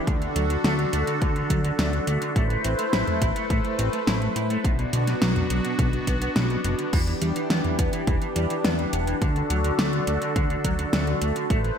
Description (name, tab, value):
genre	synthwave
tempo	105 BPM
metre	4/4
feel	straight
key	unclear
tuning	A4 = 440 Hz
part	phased analog pad	sustained chords	0.0-11.8 s	D3 to C5	-27 LUFS	left 1 dB	phaser, chorus, sidechain pumping
part	electric guitar at the edge of break-up	riff	0.1-11.7 s	B2 to E4	-30 LUFS	right 1 dB	lush chorus, low-pass filter, ping-pong delay
part	fat analog bass	bass	0.1-11.7 s	E1 to A2	-26 LUFS	equal	none
part	electronic kick drum	drums	0.1-11.6 s	none	-25 LUFS	equal	overdrive
part	pop drum kit	drums	0.1-11.8 s	crash cymbal, hi-hat, snare drum, toms	-28 LUFS	equal	overdrive, gated reverb
room	moderate plate reverb, RT60 1.7 s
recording	bright 1980s-style digital production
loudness	-21 LUFS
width	side -8 dB against mid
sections	0.0-11.8 A section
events	none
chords	0.1 D; 2.4 Amadd9; 4.6 Bm; 6.9 Em7; 9.2 D